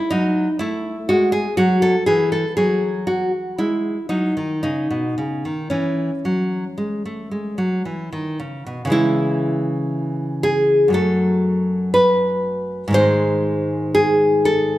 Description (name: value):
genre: classical, baroque-style dance for nylon-string guitar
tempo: 58 BPM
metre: 4/4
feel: uneven beats, rubato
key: C# minor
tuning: A4 = 440 Hz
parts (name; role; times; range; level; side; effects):
- nylon-string guitar; solo; 0.0-14.8 s; F#2 to B#4; -17 LUFS; equal; none
room: moderate recital hall reverb, RT60 1.6 s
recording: minimal, uncompressed stereo recording, faint mains hum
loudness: -17 LUFS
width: side -15 dB against mid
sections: 0.0-8.9 A section; 8.9-14.8 B section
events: none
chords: 0.0 N.C.; 0.6 A5; 2.6 N.C.; 3.6 G#5; 4.6 C#m; 10.9 F#m; 13.0 G#